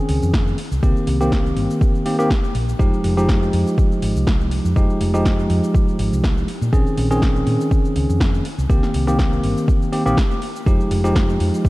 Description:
deep house; 122 BPM; 4/4; swing 54% on 16ths; F minor; A4 = 441 Hz
bell-like tine electric piano; stabs; 0.0-11.7 s; Eb3 to Ab4; -20 LUFS; equal; sidechain pumping, tape echo
hollow-body short-scale fingered electric bass; bass; 0.1-11.5 s; F1 to Bb2; -21 LUFS; equal; sidechain pumping
deep house drum kit; drums; 0.1-11.7 s; hi-hat, shaker, snare drum; -28 LUFS; equal; overdrive, vintage 12-bit sampler grit
electronic kick drum; drums; 0.3-11.7 s; -18 LUFS; equal; vintage 12-bit sampler grit
light reverb, digital ambience; cassette tape; -16 LUFS; side -19 dB against mid
0.0-11.7 A section
0.0 Bbm11 (rootless); 0.6 Cm7; 2.8 Fm9; 6.5 Bbm11; 8.4 Cm7; 10.7 Fm9

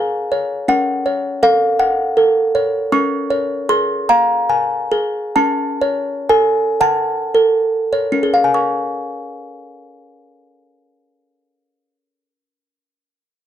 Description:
classical, lullaby for music box; 31-54 BPM (dotted quarters); 6/8; straight; Db major; A4 = 445 Hz
music box; solo; 0.0-11.7 s; Db4 to Db6; -14 LUFS; equal
little or no reverb; dry, close 1970s-style studio recording; -14 LUFS; side -10 dB against mid
0.0-8.5 A section; 8.5-12.3 B section
slowing down 1.8-8.5
0.0 Db; 0.7 Gbm/Db; 2.9 Db; 5.4 Gbm/Db; 8.5 Db

